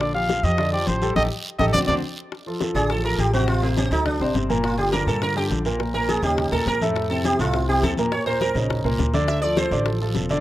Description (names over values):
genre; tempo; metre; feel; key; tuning
Afro-Cuban jazz; 207 BPM; 4/4; straight; D minor; A4 = 441 Hz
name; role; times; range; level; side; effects
breathy trumpet; melody; 0.0-1.9 s; C5 to F5; -23 LUFS; equal; plate reverb
dark concert grand piano; accompaniment; 0.0-10.4 s; A2 to D5; -24 LUFS; equal; plate reverb
upright bass; bass; 0.0-10.4 s; E1 to G2; -25 LUFS; equal; none
bongos; percussion; 0.0-10.3 s; none; -30 LUFS; left 7 dB; none
congas; percussion; 0.0-10.4 s; none; -30 LUFS; left 2 dB; none
guiro; percussion; 0.0-10.4 s; none; -36 LUFS; right 2 dB; none
sitar; second line; 2.8-10.0 s; A3 to E5; -24 LUFS; right 1 dB; plate reverb
room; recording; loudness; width
moderate small room reverb, RT60 0.5 s; rough home demo mix; -19 LUFS; side -15 dB against mid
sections
0.0-2.3 A section; 2.3-10.4 A section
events
trumpet solo 0.0-2.3; band accent 1.2-2.3; sitar solo 2.3-10.4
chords
0.0 Bb69; 1.2 Eb; 1.7 D7; 2.3 Dm7; 3.5 Adim7; 4.1 D7b13; 4.6 Gm7; 5.8 Bbm; 6.4 Ebsus2; 7.0 Fmaj7; 8.1 Eb5; 9.3 Dm7